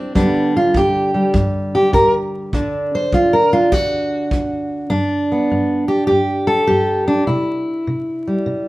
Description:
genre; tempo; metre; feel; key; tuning
acoustic country blues, solo or duo; 101 BPM; 4/4; swing 66% on 8ths; G major; A4 = 437 Hz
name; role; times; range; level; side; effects
fingerpicked steel-string acoustic guitar; melody; 0.0-8.7 s; D2 to C5; -15 LUFS; equal; none
kick drum; drums; 0.2-4.5 s; none; -22 LUFS; equal; none
room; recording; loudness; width
wet studio reverb, RT60 0.8 s; band playing live in one room, vinyl crackle; -14 LUFS; side -18 dB against mid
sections
0.0-4.9 A section; 4.9-8.7 B section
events
steel-string acoustic guitar solo 0.0-4.9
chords
0.2 G5; 2.5 N.C.; 4.9 G; 7.3 C

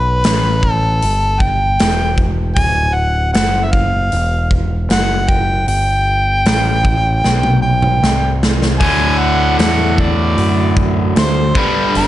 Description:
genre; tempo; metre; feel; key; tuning
blues rock power trio and southern rock; 77 BPM; 4/4; straight; unclear; A4 = 441 Hz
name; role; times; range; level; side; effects
warm harmonica; melody; 0.0-12.1 s; B4 to G#5; -17 LUFS; equal; overdrive
growling picked electric bass; bass; 0.0-12.1 s; D1 to F#2; -16 LUFS; equal; overdrive
big rock drum kit; drums; 0.2-12.1 s; hi-hat, kick drum, snare drum, toms; -17 LUFS; equal; none
biting overdriven guitar; riff; 8.8-12.1 s; D2 to G3; -16 LUFS; equal; none
room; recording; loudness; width
light reverb, small room ambience; nothing above 10.7 kHz; -12 LUFS; side -14 dB against mid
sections
0.0-12.1 A section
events
drum fill 7.2-8.8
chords
0.0 G; 2.6 D; 5.3 G; 8.8 D; 11.6 G

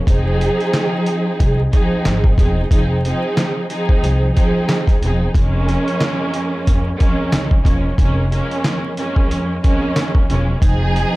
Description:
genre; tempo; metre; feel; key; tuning
hip hop, boom-bap hip-hop; 91 BPM; 4/4; swing 59% on 16ths; F minor; A4 = 440 Hz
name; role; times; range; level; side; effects
warm studio string section; accompaniment; 0.0-11.2 s; F2 to Ab4; -19 LUFS; right 1 dB; cassette tape, high-pass filter, low-pass filter
upright bass; bass; 0.1-11.0 s; E1 to F2; -18 LUFS; equal; none
trip hop sampler-style drum kit; drums; 0.1-11.1 s; handclaps, hi-hat, kick drum, snare drum; -16 LUFS; equal; none
room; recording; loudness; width
studio reverb; dark, warm production, vinyl crackle; -14 LUFS; side -19 dB against mid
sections
0.0-11.2 A section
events
none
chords
0.1 Fm7; 5.3 Bbm7; 10.6 Fm7

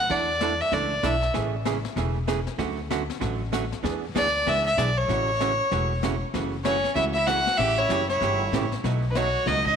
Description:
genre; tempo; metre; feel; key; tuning
country, western swing; 192 BPM; 4/4; swing 62% on 8ths; A major; A4 = 439 Hz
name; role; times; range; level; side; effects
rich fiddle; melody; 0.0-1.3, 4.2-9.8 s; B4 to F#5; -24 LUFS; left 1 dB; none
upright bass; bass; 0.0-9.7 s; E1 to E2; -29 LUFS; left 1 dB; none
archtop guitar, miked and amplified; accompaniment; 0.1-9.7 s; B2 to A4; -30 LUFS; right 10 dB; none
jazz brush drum kit; drums; 0.1-9.8 s; brushed snare drum, hi-hat, kick drum, snare drum; -34 LUFS; left 11 dB; none
clear fiddle; second line; 6.7-9.8 s; C#4 to G4; -32 LUFS; right 9 dB; none
room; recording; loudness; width
moderate echo chamber reverb, RT60 2.3 s; 1960s-style stereo with parts hard left and right; -22 LUFS; side -7 dB against mid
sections
0.0-9.8 A section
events
none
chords
0.1 E7sus4; 1.3 Amaj7; 2.6 Dmaj7; 3.8 E7; 5.1 A6; 6.3 F#m7; 7.6 A7; 8.8 B7

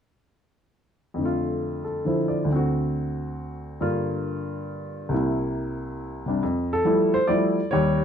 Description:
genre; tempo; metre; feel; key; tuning
jazz; 138 BPM; 3/4; swing 66% on 8ths; F major; A4 = 439 Hz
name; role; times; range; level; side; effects
warm upright piano; solo; 1.1-8.0 s; C2 to D5; -23 LUFS; equal; none
room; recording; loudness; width
moderate studio reverb, RT60 0.6 s; dark, warm production; -23 LUFS; side -8 dB against mid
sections
1.2-6.4 A section; 6.4-8.0 B section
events
none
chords
1.2 F6; 2.5 D7; 3.8 Gm7; 5.1 C7; 6.4 Fmaj9

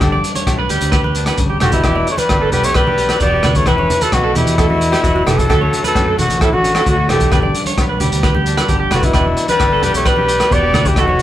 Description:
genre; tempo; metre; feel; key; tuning
highlife guitar band; 131 BPM; 4/4; straight; unclear; A4 = 436 Hz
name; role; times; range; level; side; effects
breathy trumpet; melody; 0.0-11.2 s; E4 to D5; -17 LUFS; left 1 dB; none
raspy tenor saxophone; second line; 0.0-11.2 s; A2 to B3; -24 LUFS; left 2 dB; none
semi-hollow electric guitar; accompaniment; 0.0-11.2 s; G2 to A4; -25 LUFS; left 5 dB; none
electric guitar at the edge of break-up; arpeggios; 0.0-11.2 s; E4 to D5; -20 LUFS; right 5 dB; none
fingered electric bass; bass; 0.0-11.2 s; E1 to F#2; -20 LUFS; equal; none
crunchy breakbeat drum kit; drums; 0.0-11.2 s; hi-hat, kick drum, rim click; -18 LUFS; equal; none
agogo bells; percussion; 0.0-11.1 s; none; -28 LUFS; left 3 dB; none
congas; percussion; 0.0-11.2 s; none; -23 LUFS; right 1 dB; none
room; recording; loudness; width
moderate stone room reverb, RT60 1.3 s; band playing live in one room; -12 LUFS; side -12 dB against mid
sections
0.0-11.2 A section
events
none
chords
0.0 G; 1.8 Em7; 3.7 Asus2/E; 5.5 Dadd9; 7.3 G; 9.1 Em7

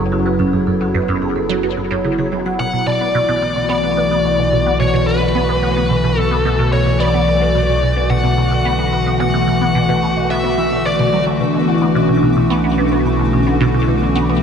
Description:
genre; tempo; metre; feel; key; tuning
ambient, sequencer-driven space music; 109 BPM; 4/4; straight; B minor; A4 = 440 Hz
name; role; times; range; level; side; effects
evolving wavetable pad; sustained chords; 0.0-14.4 s; D3 to F#4; -18 LUFS; left 1 dB; chorus, built-in reverb
vibraphone with medium mallets; arpeggios; 0.0-2.6, 11.4-14.4 s; A3 to F#5; -20 LUFS; moving between left 3 dB and right 4 dB; auto-pan, ping-pong delay
resonant blip pluck; riff; 0.0-14.3 s; F#2 to B3; -20 LUFS; right 2 dB; phaser, ensemble chorus, ping-pong delay
analog drone; bass; 0.0-14.4 s; F#1 to B1; -22 LUFS; equal; chorus
bluesy overdriven lead guitar; melody; 2.6-11.2 s; B4 to F#5; -19 LUFS; left 2 dB; distortion, ping-pong delay
pulsing gated texture; texture; 8.2-14.4 s; D6; -36 LUFS; left 2 dB; none
room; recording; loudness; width
wet plate reverb, RT60 3.5 s; none; -13 LUFS; side -7 dB against mid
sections
0.0-2.6 A section; 2.6-14.4 B section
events
none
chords
0.0 F#m; 2.6 Bm

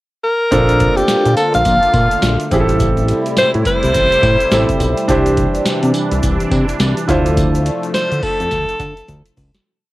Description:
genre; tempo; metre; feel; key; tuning
R&B, new jack swing; 105 BPM; 4/4; swing 61% on 16ths; D minor; A4 = 441 Hz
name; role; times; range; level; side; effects
bright alto saxophone; melody; 0.2-9.4 s; G4 to F5; -15 LUFS; equal; cassette tape, tape echo
clear baby grand piano; accompaniment; 0.5-9.7 s; C4 to C5; -19 LUFS; right 1 dB; cassette tape
sweeping resonant pad; sustained chords; 0.5-9.6 s; C3 to F4; -21 LUFS; equal; chorus, cassette tape
fat analog bass; bass; 0.5-9.5 s; A1 to D3; -17 LUFS; equal; none
booming analog drum machine; drums; 0.5-9.7 s; hi-hat, kick drum, snare drum, tambourine; -20 LUFS; equal; cassette tape
tube shaker; percussion; 0.5-9.6 s; none; -38 LUFS; left 6 dB; none
room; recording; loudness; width
light reverb; home recording on cassette; -12 LUFS; side -18 dB against mid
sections
0.0-0.5 pickup bar; 0.5-9.7 chorus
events
fade-out 7.4-9.7; drum fill 9.1-9.7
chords
0.0 N.C.; 0.5 Bbmaj7; 2.5 Am7; 5.1 Cadd9; 7.1 Dm7

